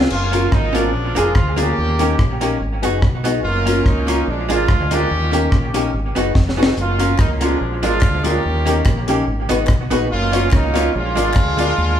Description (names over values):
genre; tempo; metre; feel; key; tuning
ska; 144 BPM; 4/4; swing 54% on 8ths; F# major; A4 = 440 Hz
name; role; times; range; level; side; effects
archtop guitar, miked and amplified; accompaniment; 0.0-11.7 s; G#3 to A#4; -22 LUFS; right 4 dB; analog delay
dark upright piano; stabs; 0.0-11.7 s; B3 to D5; -23 LUFS; left 5 dB; none
deep dub fingered electric bass; bass; 0.0-12.0 s; E#1 to D#2; -21 LUFS; equal; none
deep reggae drum kit; drums; 0.0-11.7 s; crash cymbal, hi-hat, kick drum, rim click, snare drum; -18 LUFS; equal; none
warm horn section; melody; 0.1-12.0 s; E#3 to G4; -21 LUFS; right 1 dB; none
group handclap; percussion; 7.2-11.4 s; none; -33 LUFS; left 3 dB; none
room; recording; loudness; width
moderate large studio reverb, RT60 0.8 s; band playing live in one room; -15 LUFS; side -10 dB against mid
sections
0.1-12.0 A section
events
drum fill 6.4-6.8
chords
0.1 F#maj7; 0.9 A#7; 1.8 D#7; 2.6 G#m7; 3.4 F#maj7; 4.3 A#7; 5.1 D#7; 5.9 G#m7; 6.8 F#maj7; 7.6 A#7; 8.4 D#7; 9.3 G#m7; 10.1 F#maj7; 10.9 A#7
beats
| 0.11 0.53 0.94 1.36 | 1.77 2.19 2.61 3.02 | 3.44 3.86 4.28 4.69 | 5.11 5.53 5.94 6.36 | 6.78 7.19 7.61 8.03 | 8.44 8.86 9.28 9.69 | 10.11 10.53 10.94 11.36 | 11.78